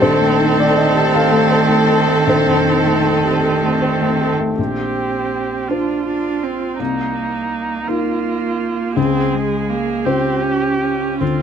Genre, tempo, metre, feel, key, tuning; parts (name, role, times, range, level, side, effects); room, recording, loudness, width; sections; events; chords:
neoclassical piano and strings; 54 BPM (dotted quarters); 6/8; rubato; A4 = 440 Hz
rich chamber violin section; melody; 0.0-4.3 s; A4; -18 LUFS; left 1 dB
rich cello; second line; 0.0-11.4 s; Eb3 to D4; -20 LUFS; right 5 dB
clear viola; accompaniment; 0.0-11.4 s; C4 to Ab4; -21 LUFS; right 4 dB
felt-muted upright piano; accompaniment; 0.0-11.4 s; Bb1 to F5; -19 LUFS; left 4 dB
chorused pulse-width pad; sustained chords; 0.0-4.6 s; A3 to C5; -24 LUFS; left 1 dB
light reverb; -14 LUFS; side -8 dB against mid
0.0-4.6 A section; 4.6-11.4 B section
0.0 F7/Bb; 4.6 Bbadd9; 6.8 F7sus4/C; 9.0 Dbmaj7